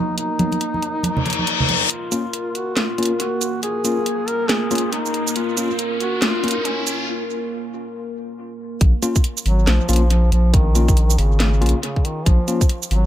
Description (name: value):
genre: deep dubstep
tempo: 139 BPM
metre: 4/4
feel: swing 61% on 16ths, half-time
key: Bb minor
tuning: A4 = 441 Hz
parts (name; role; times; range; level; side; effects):
- mellow duduk; melody; 0.0-13.1 s; Db3 to Bb4; -25 LUFS; equal; dub echo
- dark analog pad; sustained chords; 0.0-8.9 s; Bb3 to Bb4; -27 LUFS; equal; chorus, phaser
- garage drum kit; drums; 0.2-13.0 s; hi-hat, shaker, snare drum; -23 LUFS; right 1 dB; tape echo
- tine electric piano; stabs; 0.4-12.6 s; F#3 to F4; -27 LUFS; left 3 dB; medium tremolo, low-pass filter, dub echo
- congas; percussion; 0.4-1.8 s; none; -23 LUFS; right 2 dB; none
- reverse cymbal and riser; sound effects; 1.2-7.1 s; none; -24 LUFS; left 3 dB; none
- saturated sub bass; bass; 8.8-13.1 s; Ab1 to Bb1; -16 LUFS; equal; none
- electronic kick drum; drums; 8.8-12.7 s; none; -16 LUFS; equal; none
room: light reverb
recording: echo-heavy mix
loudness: -17 LUFS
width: side -12 dB against mid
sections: 0.0-1.9 A section; 1.9-8.8 B section; 8.8-13.1 C section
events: reverse cymbal 1.2-1.9; build-up 1.9-8.8; riser 1.9-7.1; break 7.1-8.8; drop 8.8-13.1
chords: 0.0 N.C.; 1.9 Bb5; 8.8 Bbm